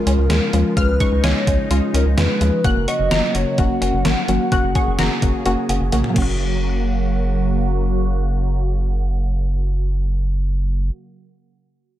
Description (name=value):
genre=synth-pop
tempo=128 BPM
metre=4/4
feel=straight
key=F# major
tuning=A4 = 440 Hz
part: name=hollow clarinet-like synth lead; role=melody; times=0.0-5.9 s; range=A#4 to F#5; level=-24 LUFS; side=equal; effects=chorus, low-pass filter, tape echo
part: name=soft round pluck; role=accompaniment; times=0.0-11.0 s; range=G#3 to G#4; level=-22 LUFS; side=left 3 dB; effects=chorus, low-pass filter
part: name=phased analog pad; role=sustained chords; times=0.0-10.9 s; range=C#3 to G#4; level=-26 LUFS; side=equal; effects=phaser, chorus, low-pass filter
part: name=resonant blip pluck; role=arpeggios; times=0.0-11.1 s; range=E#3 to F#6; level=-27 LUFS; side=right 2 dB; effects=phaser, low-pass filter, tape echo
part: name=rubbery square bass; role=bass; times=0.1-10.9 s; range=F#1 to E#2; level=-19 LUFS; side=equal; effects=none
part: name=gated 80s digital drum machine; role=drums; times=0.1-6.3 s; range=crash cymbal, hi-hat, kick drum, snare drum, toms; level=-22 LUFS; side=equal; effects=gated reverb, gated reverb snare, overdrive
room=light reverb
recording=none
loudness=-16 LUFS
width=side -13 dB against mid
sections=0.0-6.4 A section; 6.4-10.1 B section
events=filter sweep 0.0-6.4; drum fill 5.9-6.4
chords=0.0 C#; 2.6 F#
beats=0.30 | 0.77 1.24 1.71 2.18 | 2.65 3.11 3.58 4.05 | 4.52 4.99 5.46 5.93 | 6.39 6.86 7.33 7.80 | 8.27 8.74 9.21 9.68